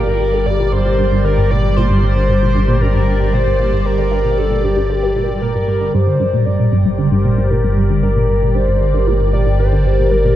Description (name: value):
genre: ambient, sequencer-driven space music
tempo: 115 BPM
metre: 4/4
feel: straight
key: G minor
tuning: A4 = 440 Hz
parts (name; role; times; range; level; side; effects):
- pulse-width lead; melody; 0.0-10.4 s; G4 to D5; -20 LUFS; left 1 dB; chorus, shimmer reverb, tape echo
- phased analog pad; sustained chords; 0.0-10.4 s; G3 to D5; -20 LUFS; right 1 dB; phaser, chorus, shimmer reverb
- round analog bass; bass; 0.0-10.4 s; G1; -18 LUFS; equal; none
- bubbling stepped-filter texture; texture; 0.0-10.4 s; Bb4 to D5; -33 LUFS; right 1 dB; chorus, built-in reverb, shimmer reverb
- resonant blip pluck; riff; 0.1-10.3 s; G2 to D3; -17 LUFS; equal; phaser, wide subtle chorus, tape echo
room: moderate plate reverb, RT60 3.0 s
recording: dreamy mix soaked in reverb, nothing above 10.6 kHz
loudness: -12 LUFS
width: side -12 dB against mid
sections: 0.0-5.9 A section; 5.9-10.4 B section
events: none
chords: 0.0 Gm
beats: 0.20 0.72 1.25 | 1.77 2.29 2.81 3.33 | 3.85 4.38 4.90 5.42 | 5.94 6.46 6.98 7.51 | 8.03 8.55 9.07 9.59 | 10.12